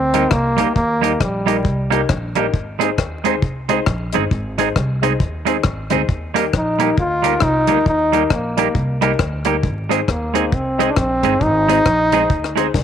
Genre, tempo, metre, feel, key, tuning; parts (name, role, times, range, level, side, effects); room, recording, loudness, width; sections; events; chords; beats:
ska; 135 BPM; 4/4; swing 61% on 8ths; Eb major; A4 = 440 Hz
clear trombone; melody; 0.0-1.9, 6.6-12.8 s; G3 to F4; -18 LUFS; equal
upright bass; bass; 0.0-12.8 s; G1 to Eb2; -24 LUFS; equal
clean electric guitar; accompaniment; 0.1-12.7 s; G3 to Ab4; -21 LUFS; right 11 dB; tape echo
dark upright piano; stabs; 0.1-12.7 s; Eb4 to C5; -24 LUFS; left 9 dB
deep reggae drum kit; drums; 0.1-12.8 s; hi-hat, kick drum, rim click, snare drum; -20 LUFS; left 2 dB
moderate spring reverb, RT60 2.1 s; 1960s-style stereo with parts hard left and right, vinyl crackle; -15 LUFS; side -9 dB against mid
0.0-12.8 A section
0.0 Eb; 2.5 Ab; 6.1 Eb; 9.6 Ab
0.31 | 0.75 1.20 1.64 2.09 | 2.53 2.98 3.42 3.87 | 4.31 4.76 5.20 5.64 | 6.09 6.53 6.98 7.42 | 7.86 8.31 8.75 9.19 | 9.64 10.08 10.53 10.97 | 11.41 11.86 12.30 12.74